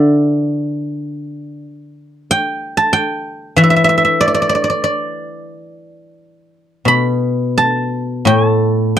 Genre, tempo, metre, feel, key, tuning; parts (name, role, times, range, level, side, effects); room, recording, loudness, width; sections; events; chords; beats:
chinese traditional, Chinese solo plucked strings; 86-96 BPM; 4/4; rubato; D zhi mode; A4 = 440 Hz
guzheng; solo; 0.0-9.0 s; A2 to B5; -13 LUFS; equal
light reverb; dry, close 1970s-style studio recording; -13 LUFS; side -10 dB against mid
0.0-9.0 A section
0.32 0.99 1.65 | 2.29 2.93 3.57 4.21 | 4.85 5.51 6.19 6.87 | 7.56 8.26 8.95